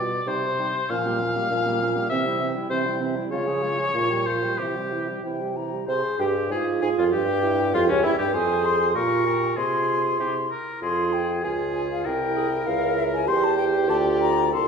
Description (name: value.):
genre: quick classical-period movement for wind quintet.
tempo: 91-101 BPM.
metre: 2/4.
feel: rubato.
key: F minor.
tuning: A4 = 440 Hz.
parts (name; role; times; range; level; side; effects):
mellow concert flute; melody; 0.0-14.7 s; C#5 to Db6; -28 LUFS; left 4 dB; none.
clear oboe; second line; 0.0-14.7 s; C#4 to F5; -28 LUFS; left 3 dB; none.
warm French horn; accompaniment; 0.0-14.7 s; E3 to A4; -29 LUFS; right 2 dB; none.
warm clarinet; accompaniment; 0.0-14.7 s; Bb3 to C5; -29 LUFS; right 6 dB; none.
mellow bassoon; bass; 0.0-14.7 s; C2 to Db3; -26 LUFS; right 2 dB; none.
room: wet recital hall reverb, RT60 1.4 s.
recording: heard from further back in the room, lossy compression artefacts.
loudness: -21 LUFS.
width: side -6 dB against mid.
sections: 0.0-5.9 A section; 5.9-14.7 B section.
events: none.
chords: 0.3 Cm; 0.9 Gm7b5/Bb; 2.1 C; 3.3 Db; 3.9 Gm7b5/Bb; 4.6 C; 5.9 Fm; 7.1 C#dim; 8.3 Fm; 9.0 Bbm; 9.6 Fm/C; 10.2 C; 10.8 Fm; 12.1 C7; 13.3 C/E; 13.9 Bb/D.